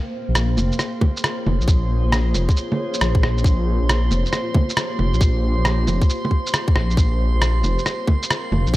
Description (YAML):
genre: future garage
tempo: 136 BPM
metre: 4/4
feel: swing 66% on 16ths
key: Bb dorian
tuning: A4 = 436 Hz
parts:
  - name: granular cloud pad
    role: sustained chords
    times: 0.0-8.8 s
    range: Bb3 to G5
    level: -27 LUFS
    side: equal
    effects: built-in reverb, sidechain pumping
  - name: drifting glass-harmonics texture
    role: texture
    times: 0.6-8.8 s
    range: C6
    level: -32 LUFS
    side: right 4 dB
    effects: chorus, built-in reverb
  - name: swelling detuned saw bass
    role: bass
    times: 0.3-8.8 s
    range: F1 to Bb1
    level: -19 LUFS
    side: equal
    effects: sidechain pumping
  - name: electronic rim click, shaker and bongos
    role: drums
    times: 0.4-8.8 s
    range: none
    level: -23 LUFS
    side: right 1 dB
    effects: studio reverb
  - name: electronic kick drum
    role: drums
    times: 1.0-8.8 s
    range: none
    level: -16 LUFS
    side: equal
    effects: overdrive, studio reverb
room: little or no reverb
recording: dry, gritty hardware recording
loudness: -17 LUFS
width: side -17 dB against mid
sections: 0.0-8.8 A section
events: none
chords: 0.0 Bbm7; 7.0 Fsus2